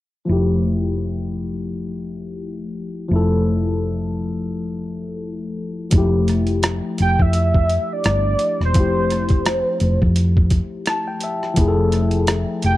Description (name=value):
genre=R&B, neo-soul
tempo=85 BPM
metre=4/4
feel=swing 56% on 16ths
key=F major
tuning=A4 = 439 Hz
part: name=tine electric piano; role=accompaniment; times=0.3-12.8 s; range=F3 to A5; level=-22 LUFS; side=left 2 dB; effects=phaser
part: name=hollow-body short-scale fingered electric bass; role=bass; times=0.3-12.8 s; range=E1 to F2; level=-20 LUFS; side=equal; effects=none
part: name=boom bap sampler-style drum kit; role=drums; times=5.9-12.8 s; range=hi-hat, kick drum, rim click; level=-19 LUFS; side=equal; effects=none
part: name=warm velvety synth lead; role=melody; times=7.0-12.8 s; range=C5 to G5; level=-21 LUFS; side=right 1 dB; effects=chorus, slapback echo
room=digital ambience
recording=dry, close 1970s-style studio recording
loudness=-17 LUFS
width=side -16 dB against mid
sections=0.3-5.9 A section; 5.9-12.8 B section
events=tine electric piano fill 10.5-11.6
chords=0.3 Fmaj9